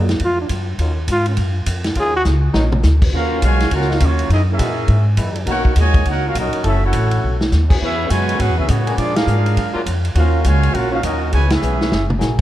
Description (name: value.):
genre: jazz, big band swing.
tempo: 205 BPM.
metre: 4/4.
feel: swing 62% on 8ths.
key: Eb minor.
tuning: A4 = 440 Hz.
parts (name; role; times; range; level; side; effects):
warm trombone section; sustained chords; 0.0-12.4 s; Eb3 to A#4; -28 LUFS; left 2 dB; none.
upright bass; bass; 0.0-12.4 s; Gb1 to Bb2; -17 LUFS; equal; none.
vintage drum kit; drums; 0.1-12.4 s; crash cymbal, hi-hat, kick drum, ride cymbal, snare drum, toms; -21 LUFS; equal; none.
brilliant trombone; melody; 0.2-2.2 s; Db4 to Ab4; -21 LUFS; equal; none.
warm trumpet section; melody; 3.1-12.1 s; Bb3 to Ab5; -22 LUFS; equal; none.
mellow trombone section; second line; 3.1-12.1 s; A#2 to Gb4; -24 LUFS; right 2 dB; none.
room: light reverb.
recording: dark, warm production.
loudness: -14 LUFS.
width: side -14 dB against mid.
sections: 0.0-3.1 A section; 3.1-12.4 B section.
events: trombone solo 0.0-3.1; drum fill 2.3-2.8, 7.2, 11.6-12.2; band accent 9.1, 11.5.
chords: 0.0 Bb5 (rootless); 0.8 Ebm9; 4.3 Gb9; 5.5 Bmaj9; 6.6 Gbm7; 7.2 B9; 7.8 E69; 9.0 Bb7b13; 10.2 Ebm9; 11.3 Dbm7.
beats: 0.21 0.51 | 0.80 1.09 1.38 1.68 | 1.97 2.26 2.55 2.84 | 3.14 3.43 3.72 4.01 | 4.30 4.60 4.89 5.18 | 5.47 5.77 6.06 6.35 | 6.64 6.94 7.23 7.52 | 7.81 8.11 8.40 8.69 | 8.98 9.28 9.57 9.86 | 10.16 10.45 10.74 11.04 | 11.33 11.62 11.92 12.21.